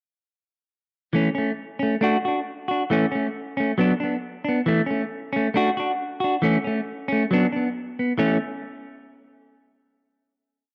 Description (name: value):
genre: highlife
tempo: 136 BPM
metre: 4/4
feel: straight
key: A major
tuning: A4 = 440 Hz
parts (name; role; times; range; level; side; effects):
- clean electric guitar; solo; 1.1-8.4 s; E3 to F#4; -24 LUFS; equal; spring reverb, cassette tape
room: light reverb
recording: home recording on cassette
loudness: -24 LUFS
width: mono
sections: 1.2-8.2 groove; 8.2-10.0 final chord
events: none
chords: 1.2 A; 2.0 D; 2.9 A; 3.8 Bm; 4.7 A; 5.6 D; 6.4 A; 7.3 Bm; 8.2 A